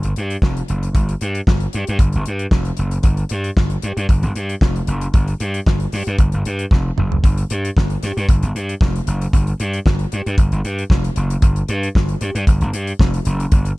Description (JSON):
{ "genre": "disco", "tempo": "114 BPM", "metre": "4/4", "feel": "straight", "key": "unclear", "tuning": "A4 = 441 Hz", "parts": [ { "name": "gritty slap bass", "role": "bass", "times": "0.0-13.7 s", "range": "F1 to G2", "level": "-19 LUFS", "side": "equal", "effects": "overdrive" }, { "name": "damped 70s drum kit", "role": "drums", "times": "0.0-13.8 s", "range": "hi-hat, kick drum, snare drum, toms", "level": "-17 LUFS", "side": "equal", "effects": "none" } ], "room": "little or no reverb", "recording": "dark, warm production", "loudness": "-16 LUFS", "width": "side -21 dB against mid", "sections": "0.0-13.8 A section", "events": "drum fill 6.7-7.2", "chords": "none" }